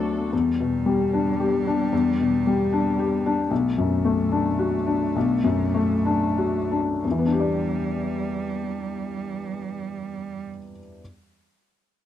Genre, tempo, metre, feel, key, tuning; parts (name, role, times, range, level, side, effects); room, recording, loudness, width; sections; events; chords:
neoclassical piano and strings; 88-115 BPM; 3/4; rubato; E minor; A4 = 440 Hz
clear cello; second line; 0.0-10.4 s; G3 to A3; -30 LUFS; right 8 dB
felt-muted upright piano; accompaniment; 0.0-11.0 s; B1 to D5; -22 LUFS; left 4 dB
light reverb; dry, close 1970s-style studio recording; -21 LUFS; side -10 dB against mid
0.3-7.0 A section; 7.0-11.0 B section
slowing down 2.7-7.0
0.3 Em7; 3.5 Bm7; 7.0 Em7